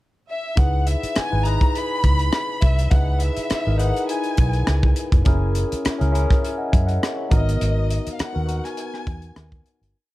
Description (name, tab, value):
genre	lush 1970s-style soul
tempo	102 BPM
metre	4/4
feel	swing 54% on 16ths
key	C# dorian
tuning	A4 = 440 Hz
part	rich chamber violin section	melody	0.3-9.7 s	D#5 to B5	-28 LUFS	left 2 dB	tape echo
part	barky tine electric piano	accompaniment	0.6-10.0 s	B3 to G#5	-27 LUFS	left 1 dB	overdrive, phaser
part	vintage muted fingered electric bass	bass	0.6-9.9 s	E#1 to F#2	-21 LUFS	equal	none
part	tight funk drum kit	drums	0.6-9.9 s	hi-hat, kick drum, rim click	-20 LUFS	equal	none
room	small room ambience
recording	dark, warm production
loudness	-18 LUFS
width	side -17 dB against mid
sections	0.0-0.6 pickup bar; 0.6-9.9 verse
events	fade-out 7.6-9.9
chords	0.0 N.C.; 0.6 C#m7; 5.3 F#7; 7.3 G#m7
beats	| 0.57 1.16 1.75 2.33 | 2.92 3.50 4.09 4.67 | 5.26 5.85 6.43 7.02 | 7.61 8.19 8.78 9.36